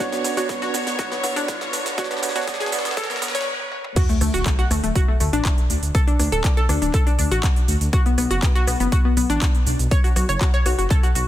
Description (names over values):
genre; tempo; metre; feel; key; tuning
progressive house; 121 BPM; 4/4; straight; B minor; A4 = 440 Hz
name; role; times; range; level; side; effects
rich symphonic string section; sustained chords; 0.0-3.5 s; D3 to C#5; -30 LUFS; left 1 dB; sidechain pumping
analog pluck; arpeggios; 0.0-11.2 s; A3 to C#5; -24 LUFS; left 2 dB; chorus, sidechain pumping, digital delay
warm concert grand piano; stabs; 0.0-3.5 s; B3 to C#5; -27 LUFS; right 5 dB; sidechain pumping, digital delay
big-room dance drum kit; drums; 0.0-11.3 s; crash cymbal, handclaps, hi-hat, rim click, shaker, snare drum, toms; -28 LUFS; right 1 dB; high-pass filter on snare, high-pass filter on hats, high-pass filter on perc, high-pass filter on toms, high-pass filter on cymbals
electronic kick drum; drums; 0.0-11.0 s; none; -19 LUFS; equal; none
riser and sub drop; sound effects; 0.1-5.9 s; none; -31 LUFS; equal; none
dark detuned saw bass; bass; 4.2-11.2 s; D1 to D2; -22 LUFS; equal; sidechain pumping
room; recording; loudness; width
light reverb; dense, heavily limited modern master, high-pass filter; -18 LUFS; side -13 dB against mid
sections
0.0-4.0 A section; 4.0-11.3 B section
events
build-up 0.0-4.0; drum fill 0.0-3.5, 3.6-4.0; filter sweep on synth arpeggio sound 0.0-4.0; riser 0.1-3.5; stop 3.5-4.0; drop 4.0-11.3; impact 4.0-5.9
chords
0.0 Bmadd9; 4.0 D; 7.9 Bm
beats
| 0.00 0.49 0.99 1.48 | 1.98 2.48 2.97 3.47 | 3.96 4.46 4.96 5.45 | 5.95 6.44 6.94 7.43 | 7.93 8.43 8.92 9.42 | 9.91 10.41 10.90